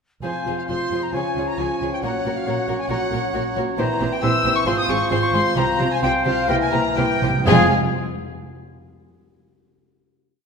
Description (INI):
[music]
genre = quick classical-period movement for symphony orchestra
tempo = 119-140 BPM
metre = 4/4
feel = rubato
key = F minor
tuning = A4 = 439 Hz
[part]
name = warm chamber violin section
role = melody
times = 0.2-7.7 s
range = F5 to E6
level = -27 LUFS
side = left 5 dB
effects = none
[part]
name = concert flute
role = second line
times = 0.2-7.7 s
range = Ab4 to E6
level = -26 LUFS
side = left 2 dB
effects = none
[part]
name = warm chamber violin section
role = second line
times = 0.2-7.7 s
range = F4 to Db5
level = -28 LUFS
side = left 4 dB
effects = none
[part]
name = warm oboe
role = second line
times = 0.2-7.7 s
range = Ab4 to Db5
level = -28 LUFS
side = right 2 dB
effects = none
[part]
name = dark chamber viola section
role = accompaniment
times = 0.2-7.7 s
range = F3 to Gb4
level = -29 LUFS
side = right 2 dB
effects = none
[part]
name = mellow bassoon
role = accompaniment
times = 0.2-7.7 s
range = E3 to Gb3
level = -27 LUFS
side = right 1 dB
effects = none
[part]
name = dark French horn section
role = sustained chords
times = 0.2-7.7 s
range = Ab3 to Gb4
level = -27 LUFS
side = left 3 dB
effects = none
[part]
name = dark chamber cello section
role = bass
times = 0.2-7.7 s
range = F2 to Db3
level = -28 LUFS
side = right 3 dB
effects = none
[part]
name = dark chamber double bass section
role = bass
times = 0.2-7.7 s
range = F1 to Db2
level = -28 LUFS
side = right 6 dB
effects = none
[part]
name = timpani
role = percussion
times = 5.6-7.7 s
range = F2 to C3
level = -27 LUFS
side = right 1 dB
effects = none
[sound]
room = wet concert hall reverb, RT60 1.8 s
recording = minimal, uncompressed stereo recording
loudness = -18 LUFS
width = side -5 dB against mid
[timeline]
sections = 0.2-7.5 A section; 7.5-9.4 final chord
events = timpani fill 6.5-7.5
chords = 0.2 Fm; 1.1 Db; 2.0 Gb/Bb; 3.8 C7/Bb; 4.7 Fm/Ab; 5.6 Csus4; 6.5 C7; 7.5 Fm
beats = | 0.23 0.69 1.14 1.59 | 2.04 2.47 2.90 3.35 | 3.79 4.23 4.67 5.11 | 5.56 6.03 6.50 6.98 | 7.47